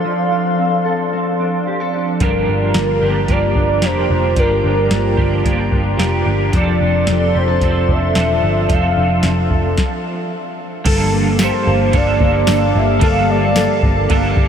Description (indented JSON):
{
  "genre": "dream pop",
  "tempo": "111 BPM",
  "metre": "4/4",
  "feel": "straight",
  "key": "G minor",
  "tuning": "A4 = 442 Hz",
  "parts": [
    { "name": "warm velvety synth lead", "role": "melody", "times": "0.0-14.4 s", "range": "Bb4 to F5", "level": "-20 LUFS", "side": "right 1 dB", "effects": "chorus, diffuse ambient delay" },
    { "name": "hollow soft pad", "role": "sustained chords", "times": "0.0-14.5 s", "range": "F3 to C6", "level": "-22 LUFS", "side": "equal", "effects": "chorus" },
    { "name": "mellow electric guitar", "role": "arpeggios", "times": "0.0-14.5 s", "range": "G2 to A4", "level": "-21 LUFS", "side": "left 2 dB", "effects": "ensemble chorus, diffuse ambient delay" },
    { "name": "twelve-string electric guitar", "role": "accompaniment", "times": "2.2-14.5 s", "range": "G2 to A4", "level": "-22 LUFS", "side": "right 5 dB", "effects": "tremolo, ensemble chorus" },
    { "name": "vintage muted picked electric bass", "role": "bass", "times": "2.2-14.5 s", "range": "E1 to G1", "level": "-18 LUFS", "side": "equal", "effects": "none" },
    { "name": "soft vintage rhythm box", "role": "drums", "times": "2.2-14.5 s", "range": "crash cymbal, hi-hat, kick drum, ride cymbal, snare drum, tambourine", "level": "-20 LUFS", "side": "equal", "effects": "none" }
  ],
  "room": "wet huge ambient reverb, RT60 8.7 s",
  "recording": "dreamy mix soaked in reverb",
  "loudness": "-13 LUFS",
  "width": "side -8 dB against mid",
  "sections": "0.0-10.9 A section; 10.9-14.5 B section",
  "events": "stop 9.8-10.9",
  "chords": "0.0 Dm7/F; 2.2 Gm7; 6.5 Dm7; 10.9 Gm9",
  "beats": "| 0.04 0.59 1.13 1.67 | 2.21 2.75 3.29 3.83 | 4.37 4.91 5.45 5.99 | 6.53 7.07 7.61 8.15 | 8.69 9.23 9.78 10.32 | 10.86 11.40 11.94 12.48 | 13.02 13.56 14.10"
}